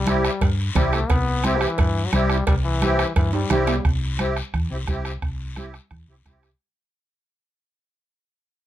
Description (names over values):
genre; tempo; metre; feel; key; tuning
latin, cumbia; 174 BPM; 4/4; straight; C major; A4 = 440 Hz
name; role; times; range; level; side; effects
growling trombone; second line; 0.0-3.8 s; E3 to C4; -26 LUFS; left 4 dB; none
hollow-body short-scale fingered electric bass; bass; 0.0-6.5 s; C2 to G2; -24 LUFS; equal; none
musette accordion; accompaniment; 0.1-6.5 s; C4 to G4; -24 LUFS; right 1 dB; none
bombo; percussion; 0.1-6.6 s; none; -24 LUFS; right 1 dB; none
congas; percussion; 0.1-6.4 s; none; -29 LUFS; right 1 dB; none
guiro; percussion; 0.1-6.6 s; none; -35 LUFS; left 6 dB; none
cowbell and timbales; percussion; 0.4-3.8 s; none; -30 LUFS; right 7 dB; none
room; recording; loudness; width
light reverb; close, detailed microphones; -19 LUFS; side -13 dB against mid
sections
0.0-3.8 A section; 3.8-6.6 B section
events
drum fill 3.3-3.8; fade-out 3.8-6.6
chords
0.0 C